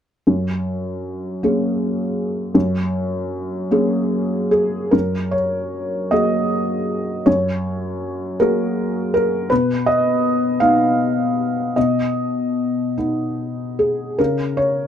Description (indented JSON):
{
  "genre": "neoclassical minimalist piano",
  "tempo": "47-55 BPM (dotted quarters)",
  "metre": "6/8",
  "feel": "rubato",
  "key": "unclear",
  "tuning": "A4 = 440 Hz",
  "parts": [
    { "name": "felt-muted upright piano", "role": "solo", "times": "0.3-14.9 s", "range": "Gb2 to F5", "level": "-17 LUFS", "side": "equal", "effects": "none" }
  ],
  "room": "light reverb",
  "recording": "none",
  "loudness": "-17 LUFS",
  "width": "side -9 dB against mid",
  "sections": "0.3-4.9 A section; 4.9-14.9 B section",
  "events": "none",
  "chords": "0.3 Gbadd9; 9.5 B; 14.2 N.C."
}